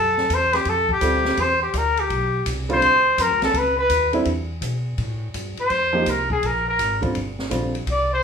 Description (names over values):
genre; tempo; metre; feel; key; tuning
jazz, small-group swing and bop; 166 BPM; 4/4; swing 65% on 8ths; unclear; A4 = 439 Hz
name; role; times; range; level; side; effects
warm trumpet; melody; 0.0-8.2 s; G4 to D5; -19 LUFS; left 1 dB; none
upright bass; bass; 0.0-8.2 s; G1 to B2; -27 LUFS; equal; none
open jazz drum kit; drums; 0.2-8.0 s; hi-hat, kick drum, ride cymbal, snare drum; -29 LUFS; equal; none
clear upright piano; accompaniment; 1.0-7.7 s; D3 to A4; -24 LUFS; right 3 dB; none
room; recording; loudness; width
light reverb; rough home demo mix, studio reverb; -18 LUFS; side -6 dB against mid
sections
0.0-4.3 A section; 4.3-8.2 A section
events
trumpet solo 0.0-8.2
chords
0.0 Am6; 0.7 Fadd9; 1.4 Em7; 2.8 Dm7; 3.5 Dbsus2; 4.3 Emadd11; 5.7 F5; 6.4 Bb7; 7.2 Gmadd11